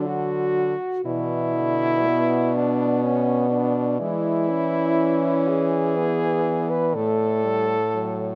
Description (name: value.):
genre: classical, lyrical piece for horn quartet.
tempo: 61 BPM.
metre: 3/4.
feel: rubato.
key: unclear.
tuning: A4 = 440 Hz.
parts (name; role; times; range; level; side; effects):
mellow French horn; melody; 0.0-8.3 s; F#4 to D5; -33 LUFS; equal; none.
warm French horn; second line; 0.0-8.3 s; C#4 to B4; -26 LUFS; equal; none.
mellow French horn; accompaniment; 0.0-8.3 s; D3 to C#4; -29 LUFS; equal; none.
clear French horn; bass; 0.0-8.3 s; A2 to E3; -28 LUFS; equal; none.
room: light reverb.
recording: close, detailed microphones.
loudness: -22 LUFS.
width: mono.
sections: 0.0-8.3 A section.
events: none.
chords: 0.0 D; 1.1 Bm; 4.0 E7; 6.9 A.